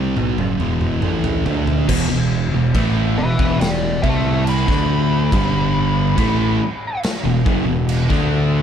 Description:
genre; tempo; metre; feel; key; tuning
stoner and doom metal; 70 BPM; 4/4; straight; E minor; A4 = 441 Hz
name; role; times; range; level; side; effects
fuzz lead guitar; melody; 0.0-7.0 s; B4 to B5; -24 LUFS; left 1 dB; wah, distortion, ping-pong delay
thick fuzz guitar; riff; 0.0-8.6 s; E2 to D4; -22 LUFS; left 8 dB; distortion
thick fuzz guitar; riff; 0.0-8.6 s; E2 to D4; -22 LUFS; right 10 dB; distortion
fuzz fingered electric bass; bass; 0.0-8.6 s; E1 to D2; -22 LUFS; equal; overdrive
raw garage drum kit; drums; 0.2-8.3 s; crash cymbal, kick drum, snare drum, toms; -22 LUFS; equal; none
distorted electric guitar; riff; 1.9-8.6 s; E2 to D4; -25 LUFS; left 1 dB; distortion
room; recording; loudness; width
small room ambience; dark, warm production; -16 LUFS; side -8 dB against mid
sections
0.0-1.9 A section; 1.9-8.6 B section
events
drum fill 0.0-1.9; lead electric guitar solo 1.9-8.6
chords
0.0 Em; 5.3 G5; 6.2 E5

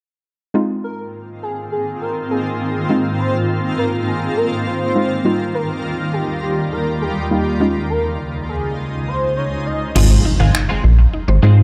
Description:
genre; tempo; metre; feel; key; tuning
dance-pop; 102 BPM; 4/4; straight; Ab major; A4 = 440 Hz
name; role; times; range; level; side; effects
soft round pluck; accompaniment; 0.5-11.6 s; G3 to F4; -22 LUFS; equal; chorus
shimmering ambient pad; sustained chords; 1.1-9.9 s; Db2 to F4; -23 LUFS; equal; chorus, built-in reverb
airy dreamy lead; melody; 0.8-9.8 s; G4 to Eb5; -26 LUFS; equal; chorus, phaser, tape echo
mallet-like synth pluck; arpeggios; 10.0-11.5 s; Eb4 to F5; -30 LUFS; equal; chorus, tape echo
twelve-string electric guitar; riff; 10.0-11.6 s; Ab3 to F4; -27 LUFS; equal; ensemble chorus
plucky analog bass; bass; 10.0-11.6 s; Ab1 to Ab2; -12 LUFS; equal; none
pop drum kit; drums; 10.0-10.7 s; crash cymbal, finger snaps; -26 LUFS; equal; none
impact; sound effects; 10.2-11.6 s; none; -24 LUFS; equal; none
room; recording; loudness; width
light reverb, digital ambience; dark, warm production; -18 LUFS; mono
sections
0.5-10.0 A section; 10.0-11.6 B section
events
impact 10.0-11.6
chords
0.5 Ab6; 5.3 Ebadd9; 7.6 Dbadd9; 10.0 Ab6

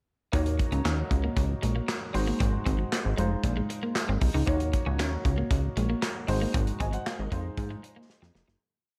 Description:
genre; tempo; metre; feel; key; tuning
early-eighties boogie funk; 116 BPM; 4/4; straight; Eb dorian; A4 = 440 Hz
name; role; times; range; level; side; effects
warm baby grand piano; accompaniment; 0.3-8.6 s; Ab3 to Ab5; -38 LUFS; equal; subtle chorus
electric guitar at the edge of break-up; riff; 0.3-8.6 s; Ab3 to Eb4; -37 LUFS; equal; subtle chorus
plucky analog bass; bass; 0.3-8.6 s; F1 to Ab2; -30 LUFS; equal; none
modern studio drum kit; drums; 0.3-8.6 s; handclaps, hi-hat, kick drum, snare drum; -33 LUFS; equal; none
room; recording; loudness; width
light reverb, small room reverb; none; -28 LUFS; mono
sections
0.3-8.6 verse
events
fade-out 6.5-8.6; drum fill 8.1-8.6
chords
0.3 Ebm7; 2.1 Ab7; 3.2 Fm7; 4.5 Ebm7; 6.3 Ab7; 7.3 Fm7

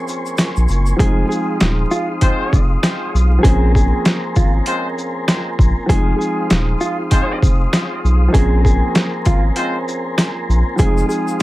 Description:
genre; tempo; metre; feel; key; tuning
hip hop, boom-bap hip-hop; 98 BPM; 4/4; swing 59% on 16ths; Bb minor; A4 = 440 Hz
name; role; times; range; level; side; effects
dark upright piano; accompaniment; 0.0-11.4 s; F3 to Ab4; -22 LUFS; right 1 dB; high-pass filter, low-pass filter
mellow tonewheel organ; sustained chords; 0.0-11.4 s; Ab4 to Eb6; -27 LUFS; left 1 dB; chorus vibrato, wide subtle chorus, high-pass filter, low-pass filter
boom bap sampler-style drum kit; drums; 0.1-11.4 s; hi-hat, kick drum, shaker, snare drum; -16 LUFS; equal; overdrive
tube shaker; percussion; 0.1-1.0, 10.8-11.4 s; none; -36 LUFS; left 5 dB; none
saturated sub bass; bass; 0.6-11.0 s; Eb1 to Cb2; -15 LUFS; equal; none
mellow electric guitar; melody; 1.0-11.4 s; F4 to Ab4; -23 LUFS; equal; high-pass filter, low-pass filter, tape echo
warm horn section; stabs; 2.2-9.8 s; Ab3 to C5; -25 LUFS; left 1 dB; high-pass filter, low-pass filter, tape echo
room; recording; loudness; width
little or no reverb; vinyl crackle; -14 LUFS; side -17 dB against mid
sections
1.0-11.4 A section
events
none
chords
0.0 Bbm9; 1.0 Fm7; 3.4 Bbm9; 5.9 Fm7; 8.3 Bbm9; 10.8 Fm7

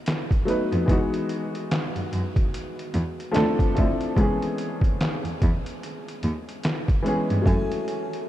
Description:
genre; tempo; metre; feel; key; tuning
lo-fi hip hop; 73 BPM; 4/4; swing 60% on 16ths; unclear; A4 = 440 Hz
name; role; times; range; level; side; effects
warm upright piano; accompaniment; 0.0-8.3 s; E3 to G#5; -27 LUFS; left 1 dB; none
trip hop sampler-style drum kit; drums; 0.1-8.3 s; handclaps, hi-hat, kick drum, snare drum; -25 LUFS; equal; overdrive, vintage 12-bit sampler grit
warm cello; bass; 0.7-7.5 s; C#2 to G2; -26 LUFS; equal; none
buzzing kalimba; melody; 7.5-8.3 s; A4; -34 LUFS; left 1 dB; none
room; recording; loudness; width
light reverb, studio reverb; none; -22 LUFS; side -13 dB against mid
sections
0.0-8.3 A section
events
break 0.0-0.9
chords
0.0 B7; 0.9 Emaj9; 3.3 Dm7; 4.2 C#m7; 7.5 F#m9

